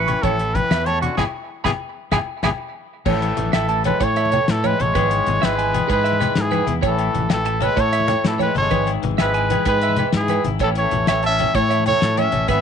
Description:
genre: highlife guitar band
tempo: 127 BPM (dotted quarters)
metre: 12/8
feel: straight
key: A major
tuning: A4 = 440 Hz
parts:
  - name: clear trumpet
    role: melody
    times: 0.0-12.6 s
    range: F#4 to E5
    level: -21 LUFS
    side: right 1 dB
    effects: none
  - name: brilliant trombone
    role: second line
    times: 0.0-12.6 s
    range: D3 to C#4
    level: -29 LUFS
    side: left 12 dB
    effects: none
  - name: semi-hollow electric guitar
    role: accompaniment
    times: 0.0-12.6 s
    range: G#2 to A4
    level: -29 LUFS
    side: left 14 dB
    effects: lush chorus
  - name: electric guitar through a small old amp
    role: arpeggios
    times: 0.0-12.6 s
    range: B4 to C#6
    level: -24 LUFS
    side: right 13 dB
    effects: harmonic tremolo
  - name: fingered electric bass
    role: bass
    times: 0.0-12.6 s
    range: G1 to A2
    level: -23 LUFS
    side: equal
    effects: none
  - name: cloth-damped thuddy drum kit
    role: drums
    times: 0.1-12.6 s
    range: crash cymbal, hi-hat, kick drum, snare drum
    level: -24 LUFS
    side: left 3 dB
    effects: none
  - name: agogo bells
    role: percussion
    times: 0.1-12.6 s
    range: none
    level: -31 LUFS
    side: left 15 dB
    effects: none
  - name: congas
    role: percussion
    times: 0.1-12.6 s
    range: none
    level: -28 LUFS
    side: left 8 dB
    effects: none
room: light reverb, small room ambience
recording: 1960s-style stereo with parts hard left and right, nothing above 10.7 kHz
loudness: -17 LUFS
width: side -7 dB against mid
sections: 0.0-3.1 A section; 3.1-12.6 B section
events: band accent 1.2-3.1; drum fill 2.9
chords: 0.0 A; 1.2 E/G#; 3.1 A; 4.9 E/G#; 6.8 A; 8.7 E/G#; 10.6 A

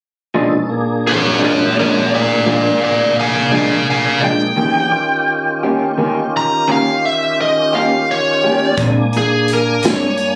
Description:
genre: slow blues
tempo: 57 BPM (dotted quarters)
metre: 12/8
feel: straight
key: Bb mixolydian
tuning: A4 = 440 Hz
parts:
  - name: electric guitar through a small old amp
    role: accompaniment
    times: 0.3-10.1 s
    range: Bb2 to G4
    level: -19 LUFS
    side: equal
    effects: harmonic tremolo
  - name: tonewheel organ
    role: sustained chords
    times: 0.3-10.4 s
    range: Bb2 to Ab5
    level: -22 LUFS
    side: equal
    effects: overdrive, chorus vibrato, slow rotary speaker
  - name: biting lead guitar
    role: melody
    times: 1.1-10.4 s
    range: Ab4 to Bb5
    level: -17 LUFS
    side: equal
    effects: overdrive, slapback echo
  - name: upright bass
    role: bass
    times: 8.8-10.4 s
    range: G2 to Bb2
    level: -22 LUFS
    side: equal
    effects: none
  - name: vintage drum kit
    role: drums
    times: 8.8-10.3 s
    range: hi-hat, kick drum, snare drum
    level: -23 LUFS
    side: equal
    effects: none
room: light reverb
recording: recorded on a phone in the room, studio reverb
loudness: -15 LUFS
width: mono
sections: 0.3-8.8 A section; 8.8-10.4 B section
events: none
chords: 0.3 Bb7; 4.6 Eb7; 8.8 Bb9

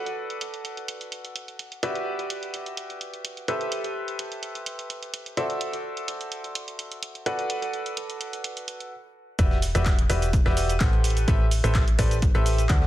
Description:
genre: piano house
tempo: 127 BPM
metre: 4/4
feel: swing 53% on 16ths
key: E minor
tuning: A4 = 440 Hz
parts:
  - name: bright upright piano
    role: riff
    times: 0.0-12.9 s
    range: F#4 to F#5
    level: -30 LUFS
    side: equal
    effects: sidechain pumping, tape echo
  - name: punchy analog drum machine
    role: drums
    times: 0.1-12.8 s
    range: handclaps, hi-hat, shaker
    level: -33 LUFS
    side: right 2 dB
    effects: low-pass filter on hats, studio reverb, low-pass filter on perc, low-pass filter on snare
  - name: solid FM bass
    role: bass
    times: 9.4-12.9 s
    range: E1 to D2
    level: -24 LUFS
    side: equal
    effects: sidechain pumping
  - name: dusty soul sampler-style drum kit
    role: drums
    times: 9.4-12.9 s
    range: hi-hat, snare drum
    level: -42 LUFS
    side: right 1 dB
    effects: none
  - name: electronic kick drum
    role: drums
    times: 9.4-12.8 s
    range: none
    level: -22 LUFS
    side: equal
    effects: studio reverb
room: light reverb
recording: dense, heavily limited modern master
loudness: -24 LUFS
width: side -14 dB against mid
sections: 0.0-9.4 A section; 9.4-12.9 B section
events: stop 8.9-9.4; drop 9.4-12.9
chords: 0.0 Bm7; 1.8 Em9; 3.5 Am9; 5.4 D9; 7.3 Bm7; 9.4 Em9; 11.0 Am9

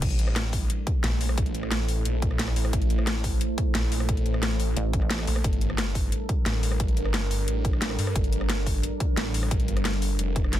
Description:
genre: dark technical drum and bass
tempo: 177 BPM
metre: 4/4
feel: straight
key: A phrygian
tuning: A4 = 441 Hz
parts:
  - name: deep dark ambient pad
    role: sustained chords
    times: 0.0-10.6 s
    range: G3 to C5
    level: -33 LUFS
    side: right 1 dB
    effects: chorus, built-in reverb, sidechain pumping
  - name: snarling distorted saw bass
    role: bass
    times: 0.0-10.6 s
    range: F1 to G2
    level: -27 LUFS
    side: equal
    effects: distortion, tube saturation, sidechain pumping
  - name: drum and bass drum kit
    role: drums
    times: 0.0-10.6 s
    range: crash cymbal, hi-hat, rim click, snare drum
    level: -30 LUFS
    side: left 1 dB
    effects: overdrive
  - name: electronic kick drum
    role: drums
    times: 0.0-10.4 s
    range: none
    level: -26 LUFS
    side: equal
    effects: none
  - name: pulsing pluck wobble bass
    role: bass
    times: 4.8-5.3 s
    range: A1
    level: -28 LUFS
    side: equal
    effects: chorus
room: little or no reverb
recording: dense, heavily limited modern master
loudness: -23 LUFS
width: side -12 dB against mid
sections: 0.0-10.6 A section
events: none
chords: 0.0 Am; 5.4 Gm

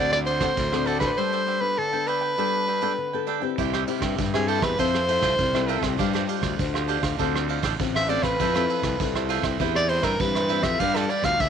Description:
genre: samba and choro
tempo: 100 BPM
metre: 4/4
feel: straight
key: C major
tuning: A4 = 440 Hz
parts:
  - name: clear soprano saxophone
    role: melody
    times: 0.0-11.5 s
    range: Ab4 to F5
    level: -24 LUFS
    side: equal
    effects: none
  - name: cavaquinho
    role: accompaniment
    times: 0.0-11.5 s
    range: D4 to G5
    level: -30 LUFS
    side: right 14 dB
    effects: none
  - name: nylon-string guitar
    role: accompaniment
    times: 0.0-11.5 s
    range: G2 to C5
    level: -29 LUFS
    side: left 13 dB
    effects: none
  - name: fuzz fingered electric bass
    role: bass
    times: 0.0-11.5 s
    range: A1 to G2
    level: -29 LUFS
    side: equal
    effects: overdrive
  - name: vintage brush drum kit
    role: drums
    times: 0.1-11.5 s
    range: kick drum, ride cymbal, rim click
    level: -30 LUFS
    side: right 4 dB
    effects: none
room: light reverb, small room ambience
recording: 1960s-style stereo with parts hard left and right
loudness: -21 LUFS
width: side -7 dB against mid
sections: 0.0-3.6 A section; 3.6-11.5 B section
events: soprano saxophone solo 3.6-11.5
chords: 0.0 D7; 1.2 Gadd9; 3.6 C; 4.8 Fmaj7; 6.0 G7sus4; 7.2 Dm7; 8.4 Fmaj7; 9.6 Cmaj7/E; 10.8 G7

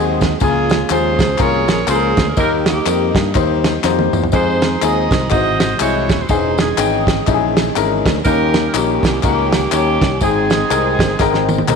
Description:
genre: uptempo gospel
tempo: 122 BPM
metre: 4/4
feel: swing 60% on 8ths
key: Ab major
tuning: A4 = 440 Hz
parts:
  - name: clear saxophone section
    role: melody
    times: 0.0-11.7 s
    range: Bb3 to Eb5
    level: -20 LUFS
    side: right 4 dB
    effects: none
  - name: warm grand piano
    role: accompaniment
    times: 0.0-11.8 s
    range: Ab2 to G5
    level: -18 LUFS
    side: left 12 dB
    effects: none
  - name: mellow tonewheel organ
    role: sustained chords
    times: 0.0-11.8 s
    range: C3 to G5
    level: -26 LUFS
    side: right 14 dB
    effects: slow rotary speaker
  - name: fingered electric bass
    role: bass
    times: 0.0-11.8 s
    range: Eb1 to G2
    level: -21 LUFS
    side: right 2 dB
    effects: none
  - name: warm soul drum kit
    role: drums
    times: 0.2-11.8 s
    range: kick drum, ride cymbal, snare drum, toms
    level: -19 LUFS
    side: right 2 dB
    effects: none
  - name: tambourine and handclaps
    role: percussion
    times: 0.2-11.8 s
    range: none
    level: -27 LUFS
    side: left 11 dB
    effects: none
room: light reverb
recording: 1960s-style stereo with parts hard left and right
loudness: -13 LUFS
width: side -5 dB against mid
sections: 0.0-11.8 A section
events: drum fill 3.8-4.3, 11.2-11.8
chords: 0.4 Db6; 2.4 Eb; 4.3 Fm7; 5.3 Ab7b13; 6.3 Dbmadd9/Fb; 8.3 Eb7; 10.2 Abmaj7

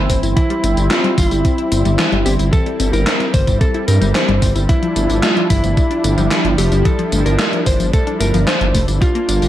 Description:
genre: synthwave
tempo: 111 BPM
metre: 4/4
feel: straight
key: unclear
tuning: A4 = 440 Hz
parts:
  - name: lightly driven lead guitar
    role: melody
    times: 0.0-9.5 s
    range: E4 to C5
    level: -20 LUFS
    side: equal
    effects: tape echo
  - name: warm analog pad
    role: sustained chords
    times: 0.0-9.5 s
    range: E3 to E4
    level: -22 LUFS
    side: equal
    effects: chorus, sidechain pumping
  - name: dark detuned saw bass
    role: bass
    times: 0.0-9.5 s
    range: F1 to G2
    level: -16 LUFS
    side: equal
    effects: tube saturation, sidechain pumping
  - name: wide unison pluck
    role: arpeggios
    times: 0.1-9.5 s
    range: E3 to G4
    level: -23 LUFS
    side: left 4 dB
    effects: tape echo
  - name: electronic kick drum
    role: drums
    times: 0.1-9.1 s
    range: none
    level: -16 LUFS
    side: equal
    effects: none
  - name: gated 80s digital drum machine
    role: drums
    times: 0.1-9.5 s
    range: handclaps, hi-hat, snare drum, tambourine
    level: -21 LUFS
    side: equal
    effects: gated reverb, gated reverb snare
room: light reverb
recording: none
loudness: -13 LUFS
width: side -12 dB against mid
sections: 0.0-9.5 A section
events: none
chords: 0.4 C/G; 4.7 Dmadd9

